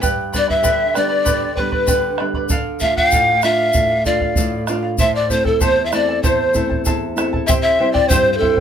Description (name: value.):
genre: andean folk, Andean ensemble.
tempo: 97 BPM.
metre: 2/4.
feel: straight.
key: A minor.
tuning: A4 = 440 Hz.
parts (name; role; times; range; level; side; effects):
charango; accompaniment; 0.0-8.6 s; E4 to B5; -24 LUFS; right 1 dB; none.
flamenco guitar; accompaniment; 0.0-8.6 s; E2 to F4; -23 LUFS; right 1 dB; none.
bombo; percussion; 0.0-8.6 s; none; -22 LUFS; right 1 dB; none.
tube shaker; percussion; 0.0-8.2 s; none; -27 LUFS; left 4 dB; none.
breathy hollow pan flute; melody; 0.4-8.6 s; A4 to F5; -17 LUFS; equal; none.
breathy mellow large quena; second line; 0.4-8.6 s; A4 to G5; -22 LUFS; left 5 dB; none.
room: moderate small room ambience, RT60 0.5 s.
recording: none.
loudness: -14 LUFS.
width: side -8 dB against mid.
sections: 0.0-7.5 A section; 7.5-8.6 B section.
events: none.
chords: 0.0 G; 2.5 Dm; 5.0 Am; 7.5 C.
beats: | 0.03 0.65 | 1.27 1.89 | 2.51 3.13 | 3.75 4.37 | 4.99 5.61 | 6.23 6.86 | 7.48 8.10.